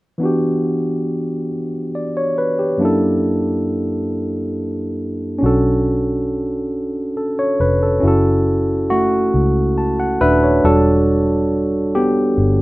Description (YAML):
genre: slow six-eight R&B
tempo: 46 BPM (dotted quarters)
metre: 6/8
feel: straight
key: E dorian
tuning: A4 = 440 Hz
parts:
  - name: barky tine electric piano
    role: accompaniment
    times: 0.2-12.6 s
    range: F#2 to A5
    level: -16 LUFS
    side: equal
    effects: none
  - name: vintage muted fingered electric bass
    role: bass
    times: 5.4-12.6 s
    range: D#1 to C#2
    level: -19 LUFS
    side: equal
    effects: none
room: light reverb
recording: rough home demo mix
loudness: -15 LUFS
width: side -19 dB against mid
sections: 0.2-10.6 A section; 10.6-12.6 B section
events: tine electric piano solo 10.6-12.6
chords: 0.2 Em9; 2.8 F#7alt; 5.4 Bm9; 8.0 F#m7; 10.6 Em9